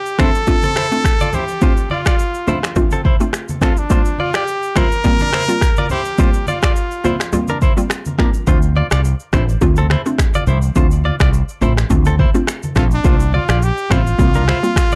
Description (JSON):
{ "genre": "afrobeats", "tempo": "105 BPM", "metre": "4/4", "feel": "swing 55% on 16ths", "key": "D minor", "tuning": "A4 = 442 Hz", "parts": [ { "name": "clear trumpet", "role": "melody", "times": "0.0-7.6, 12.8-15.0 s", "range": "D4 to Bb4", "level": "-23 LUFS", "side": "equal", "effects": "delay" }, { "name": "afro-pop drum kit", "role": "drums", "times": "0.1-15.0 s", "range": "finger snaps, kick drum, rim click, shaker", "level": "-18 LUFS", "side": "equal", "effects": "none" }, { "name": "hollow square pluck", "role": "accompaniment", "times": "0.2-14.8 s", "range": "G3 to F4", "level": "-22 LUFS", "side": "equal", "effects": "chorus" }, { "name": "direct-recorded clean electric guitar", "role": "riff", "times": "0.2-15.0 s", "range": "C4 to D5", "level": "-26 LUFS", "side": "equal", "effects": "spring reverb, delay" }, { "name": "congas", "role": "percussion", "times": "0.2-15.0 s", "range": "none", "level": "-28 LUFS", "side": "equal", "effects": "none" }, { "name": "mellow fretless electric bass", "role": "bass", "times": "8.5-14.5 s", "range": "A1 to D2", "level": "-18 LUFS", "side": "equal", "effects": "none" } ], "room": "light reverb", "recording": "dark, warm production", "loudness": "-16 LUFS", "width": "mono", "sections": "0.0-15.0 A section", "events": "none", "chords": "0.0 Dm7; 3.9 C7sus4; 8.5 Dm7; 13.0 C7sus4", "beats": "0.47 1.04 | 1.62 2.19 2.76 3.33 | 3.90 4.47 5.04 5.62 | 6.19 6.76 7.33 7.90 | 8.47 9.04 9.62 10.19 | 10.76 11.33 11.90 12.47 | 13.04 13.62 14.19 14.76" }